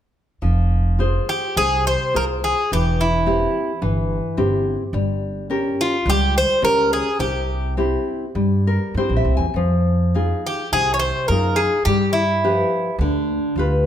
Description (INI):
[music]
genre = fado-style ballad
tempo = 105 BPM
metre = 4/4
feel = rubato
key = F harmonic minor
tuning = A4 = 440 Hz
[part]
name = nylon-string guitar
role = accompaniment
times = 0.4-13.9 s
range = C3 to Ab5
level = -22 LUFS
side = left 1 dB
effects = none
[part]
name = upright bass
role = bass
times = 0.4-13.9 s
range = E1 to G2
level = -22 LUFS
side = equal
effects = none
[part]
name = Greek bouzouki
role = melody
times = 1.3-13.0 s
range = E4 to Db5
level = -19 LUFS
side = equal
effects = none
[sound]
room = moderate recital hall reverb, RT60 1.4 s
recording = none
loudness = -17 LUFS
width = side -10 dB against mid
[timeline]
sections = 0.4-13.9 A section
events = nylon-string guitar fill 8.4-9.6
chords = 0.4 Fm; 2.7 C/E; 4.9 Gdim; 7.2 C; 9.6 Fm7; 11.9 G7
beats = | 0.42 1.00 1.57 2.15 | 2.72 3.27 3.83 4.38 | 4.94 5.50 6.06 6.62 | 7.19 7.77 8.36 8.96 | 9.56 10.16 10.74 11.32 | 11.89 12.45 13.02 13.58